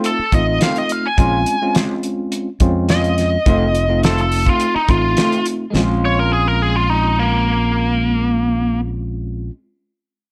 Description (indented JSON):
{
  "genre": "straight-eighth soul blues",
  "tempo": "105 BPM",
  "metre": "4/4",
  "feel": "straight",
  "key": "Bb minor",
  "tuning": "A4 = 440 Hz",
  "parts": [
    { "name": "bell-like tine electric piano", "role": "accompaniment", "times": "0.0-9.5 s", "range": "Ab3 to F4", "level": "-24 LUFS", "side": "equal", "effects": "none" },
    { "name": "electric guitar through a small old amp", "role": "stabs", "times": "0.0-9.6 s", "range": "Eb3 to F4", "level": "-28 LUFS", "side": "equal", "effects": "subtle chorus" },
    { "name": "cloth-damped thuddy drum kit", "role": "drums", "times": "0.0-5.9 s", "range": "hi-hat, kick drum, snare drum", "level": "-20 LUFS", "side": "equal", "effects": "none" },
    { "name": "biting lead guitar", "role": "melody", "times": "0.1-8.8 s", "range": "Bb3 to Ab5", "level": "-20 LUFS", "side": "equal", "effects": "overdrive" },
    { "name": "fingered electric bass", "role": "bass", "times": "0.2-9.5 s", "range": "F1 to F2", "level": "-22 LUFS", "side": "equal", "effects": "none" }
  ],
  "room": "light reverb",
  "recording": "none",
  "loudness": "-17 LUFS",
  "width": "mono",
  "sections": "0.0-5.7 A section; 5.7-8.0 B section",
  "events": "none",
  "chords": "0.0 F7; 1.2 Bbm7 (rootless); 3.5 F7; 5.7 Bbm7"
}